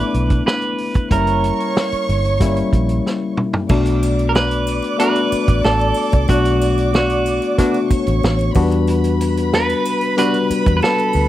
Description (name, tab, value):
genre	lush 1970s-style soul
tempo	93 BPM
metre	4/4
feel	straight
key	B minor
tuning	A4 = 438 Hz
part	electric guitar at the edge of break-up	melody	0.0-11.3 s	F#4 to B4	-20 LUFS	right 3 dB	spring reverb
part	dark studio violin section	second line	0.0-11.3 s	D4 to D6	-24 LUFS	right 1 dB	none
part	barky tine electric piano	accompaniment	0.0-11.3 s	G3 to F#4	-20 LUFS	left 4 dB	overdrive
part	vintage muted fingered electric bass	bass	0.1-11.3 s	F#1 to E2	-19 LUFS	right 1 dB	none
part	vintage drum kit	drums	0.1-11.3 s	crash cymbal, hi-hat, kick drum, snare drum, toms	-19 LUFS	right 1 dB	none
part	triangle	percussion	3.7-11.3 s	none	-38 LUFS	left 10 dB	none
part	warm horn section	stabs	5.0-10.4 s	B3 to F#4	-21 LUFS	right 3 dB	none
room	little or no reverb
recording	dry, close 1970s-style studio recording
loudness	-14 LUFS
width	side -14 dB against mid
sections	0.0-3.7 A section; 3.7-11.3 B section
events	drum fill 3.1-3.7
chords	0.0 G69 (rootless); 1.1 F#7b9; 3.7 Bm7; 8.6 Em9